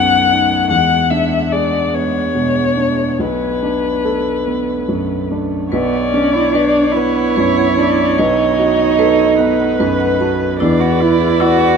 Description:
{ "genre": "neoclassical piano and strings", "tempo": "49 BPM (dotted quarters)", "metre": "6/8", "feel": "rubato", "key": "B dorian", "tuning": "A4 = 441 Hz", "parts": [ { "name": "muted violin", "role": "melody", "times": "0.0-11.8 s", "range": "B4 to F#5", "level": "-18 LUFS", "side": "left 6 dB", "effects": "none" }, { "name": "muted cello", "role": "second line", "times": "0.0-11.8 s", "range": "G#3 to F#4", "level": "-18 LUFS", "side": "right 5 dB", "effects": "none" }, { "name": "dark baby grand piano", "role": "accompaniment", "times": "0.0-11.8 s", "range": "B1 to D5", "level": "-17 LUFS", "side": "right 2 dB", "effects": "none" }, { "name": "muted viola", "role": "accompaniment", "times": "5.7-11.8 s", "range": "B4 to D5", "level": "-22 LUFS", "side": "equal", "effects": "none" }, { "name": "marimba with medium hard mallets", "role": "arpeggios", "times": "5.7-11.7 s", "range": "E4 to B5", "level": "-23 LUFS", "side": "left 3 dB", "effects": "none" } ], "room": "light reverb", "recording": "minimal, uncompressed stereo recording", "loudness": "-12 LUFS", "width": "side -6 dB against mid", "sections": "0.0-5.7 A section; 5.7-11.8 A section", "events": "none", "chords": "0.0 B7; 0.7 E7; 3.2 Bm7; 5.7 Bmadd9; 8.2 B7; 10.6 E7", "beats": "| 0.70 1.93 | 3.19 4.47 | 5.73 6.97 | 8.19 9.39 | 10.61" }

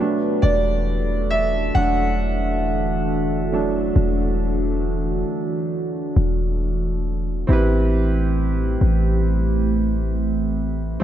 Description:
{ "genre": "R&B", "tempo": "68 BPM", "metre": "4/4", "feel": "straight", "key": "A minor", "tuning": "A4 = 436 Hz", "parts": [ { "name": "dark concert grand piano", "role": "accompaniment", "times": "0.0-11.0 s", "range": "F#3 to F#5", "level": "-23 LUFS", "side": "right 3 dB", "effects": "none" }, { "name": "deep dark ambient pad", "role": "sustained chords", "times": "0.0-11.0 s", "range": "E3 to A4", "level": "-25 LUFS", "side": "right 1 dB", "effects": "chorus, built-in reverb" }, { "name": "warm 808-style bass", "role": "bass", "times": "0.4-11.0 s", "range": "E1 to A1", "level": "-21 LUFS", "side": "left 1 dB", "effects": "none" } ], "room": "light reverb, small room ambience", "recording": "nothing above 10.7 kHz", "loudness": "-18 LUFS", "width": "side -11 dB against mid", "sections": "0.0-7.5 A section; 7.5-11.0 B section", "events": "grand piano solo 0.0-7.5", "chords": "0.0 E9sus4; 7.5 Am7", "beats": "| 0.43 1.31 2.19 3.08 | 3.96 4.84 5.72 6.61 | 7.49 8.37 9.25 10.13 | 11.02" }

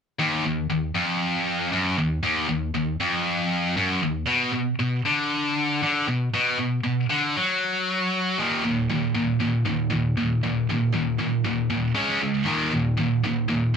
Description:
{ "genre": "metal", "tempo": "117 BPM", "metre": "4/4", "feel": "straight", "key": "Eb harmonic minor", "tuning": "A4 = 439 Hz", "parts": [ { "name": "high-gain distorted guitar", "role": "solo", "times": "0.2-13.7 s", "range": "Eb2 to Db4", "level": "-21 LUFS", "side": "equal", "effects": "distortion" } ], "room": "moderate studio ambience, RT60 0.5 s", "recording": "band playing live in one room", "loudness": "-22 LUFS", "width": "side -6 dB against mid", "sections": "0.2-8.4 A section; 8.4-13.8 B section", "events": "none", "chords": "0.2 Ebm; 4.3 B5; 8.4 Eb5; 12.0 Db5; 12.5 Eb5", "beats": "| 0.19 0.70 1.22 1.73 | 2.24 2.75 3.27 3.78 | 4.29 4.80 5.31 5.83 | 6.34 6.85 7.36 7.87 | 8.38 8.90 9.41 9.92 | 10.43 10.95 11.46 11.97 | 12.48 12.99 13.51" }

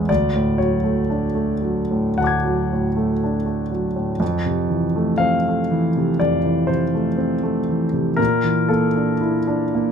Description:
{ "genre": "classical, impressionist solo piano", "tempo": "60 BPM", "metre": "4/4", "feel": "rubato", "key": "unclear", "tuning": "A4 = 440 Hz", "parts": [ { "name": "warm concert grand piano", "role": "solo", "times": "0.0-9.9 s", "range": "A1 to G#6", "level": "-18 LUFS", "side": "equal", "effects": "none" } ], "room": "light reverb", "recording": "close, detailed microphones", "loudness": "-18 LUFS", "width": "side -7 dB against mid", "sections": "0.0-9.9 A section", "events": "none", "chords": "0.1 Dmaj7#11; 4.2 Fmaj7; 8.2 Bbmaj7#11", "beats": "| 0.09 1.10 2.22 3.23 | 4.21 5.21 6.21 7.19 | 8.19 9.21" }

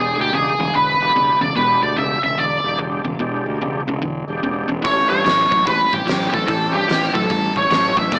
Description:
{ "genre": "blues rock power trio and southern rock", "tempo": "146 BPM", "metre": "4/4", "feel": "swing 64% on 8ths", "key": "unclear", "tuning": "A4 = 440 Hz", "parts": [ { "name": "octave-fuzz lead guitar", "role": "melody", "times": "0.0-8.2 s", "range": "G4 to E5", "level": "-16 LUFS", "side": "equal", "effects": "wah, distortion" }, { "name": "overdriven tonewheel organ", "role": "sustained chords", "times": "0.0-8.2 s", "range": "G#3 to G4", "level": "-26 LUFS", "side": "equal", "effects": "chorus vibrato, slow rotary speaker" }, { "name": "crunchy overdriven guitar", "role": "riff", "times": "0.0-8.2 s", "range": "E2 to G3", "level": "-25 LUFS", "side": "equal", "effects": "none" }, { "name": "fuzz fingered electric bass", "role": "bass", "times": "0.0-8.2 s", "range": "E1 to G2", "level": "-24 LUFS", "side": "equal", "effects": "overdrive" }, { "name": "oversized low-tuned drum kit", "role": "drums", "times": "4.8-8.2 s", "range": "hi-hat, kick drum, snare drum", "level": "-23 LUFS", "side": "equal", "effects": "none" } ], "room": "light reverb", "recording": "small speaker sound", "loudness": "-15 LUFS", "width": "side -29 dB against mid", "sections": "0.0-8.2 A section", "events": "none", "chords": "0.0 E7#9; 4.8 A7#9", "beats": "0.34 0.75 1.16 | 1.56 1.98 2.38 2.79 | 3.20 3.61 4.02 4.43 | 4.84 5.25 5.66 6.07 | 6.48 6.89 7.30 7.71 | 8.12" }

